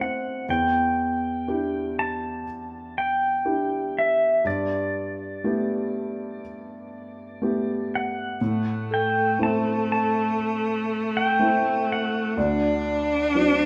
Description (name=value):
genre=acoustic folk-pop ballad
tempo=60 BPM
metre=4/4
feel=straight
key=unclear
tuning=A4 = 440 Hz
part: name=pedal steel guitar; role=melody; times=0.0-13.7 s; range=D5 to A5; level=-28 LUFS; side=equal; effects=none
part: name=felt-muted upright piano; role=accompaniment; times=0.0-13.7 s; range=D2 to G4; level=-30 LUFS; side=equal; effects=none
part: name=bright cello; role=second line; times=8.4-13.7 s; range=A3 to D4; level=-28 LUFS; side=equal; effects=none
part: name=vibraphone with soft mallets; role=arpeggios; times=8.9-13.7 s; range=A4 to D5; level=-30 LUFS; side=equal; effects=none
room=wet recital hall reverb, RT60 1.7 s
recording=none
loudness=-24 LUFS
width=mono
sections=0.5-13.7 A section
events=none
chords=0.5 Em7; 4.5 Gadd9; 8.4 Am; 12.4 D7